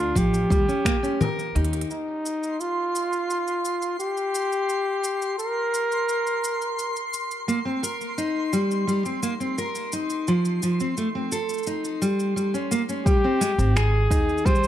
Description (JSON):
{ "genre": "folktronica", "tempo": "86 BPM", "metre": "4/4", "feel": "straight", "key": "Ab major", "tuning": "A4 = 442 Hz", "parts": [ { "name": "warm flugelhorn", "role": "melody", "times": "0.0-7.1, 13.1-14.7 s", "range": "Eb4 to C5", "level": "-25 LUFS", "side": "equal", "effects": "plate reverb, ping-pong delay" }, { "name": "fingerpicked steel-string acoustic guitar", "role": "arpeggios", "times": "0.0-1.9, 7.5-14.7 s", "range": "F3 to Bb4", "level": "-24 LUFS", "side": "equal", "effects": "plate reverb, ping-pong delay" }, { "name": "upright bass", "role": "bass", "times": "0.0-1.8, 13.6-14.7 s", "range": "Ab1 to Eb2", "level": "-23 LUFS", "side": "equal", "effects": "none" }, { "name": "electronic kick drum", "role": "drums", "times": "0.2-1.0, 13.1-14.6 s", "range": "none", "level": "-22 LUFS", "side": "equal", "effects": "none" }, { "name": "organic electronic drum kit", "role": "drums", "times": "0.2-14.7 s", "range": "cabasa, congas, finger snaps, hi-hat", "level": "-31 LUFS", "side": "left 1 dB", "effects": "none" }, { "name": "twinkling granular texture", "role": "texture", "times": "2.5-13.1 s", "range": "C6", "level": "-34 LUFS", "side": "equal", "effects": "built-in reverb" } ], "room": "moderate studio reverb, RT60 0.6 s", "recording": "dark, warm production", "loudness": "-22 LUFS", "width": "side -11 dB against mid", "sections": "0.0-1.9 A section; 1.9-13.1 B section; 13.1-14.7 C section", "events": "filter sweep on steel-string acoustic guitar 0.0-1.9; drum fill 1.6-1.9", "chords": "0.0 Dm; 0.5 Eb7; 1.9 N.C.; 7.5 Cm7; 10.3 F; 11.7 Eb7; 13.1 Abmaj7", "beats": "0.51 1.20 | 1.90 2.60 3.30 4.00 | 4.69 5.39 6.09 6.79 | 7.48 8.18 8.88 9.58 | 10.27 10.97 11.67 12.37 | 13.06 13.76 14.46" }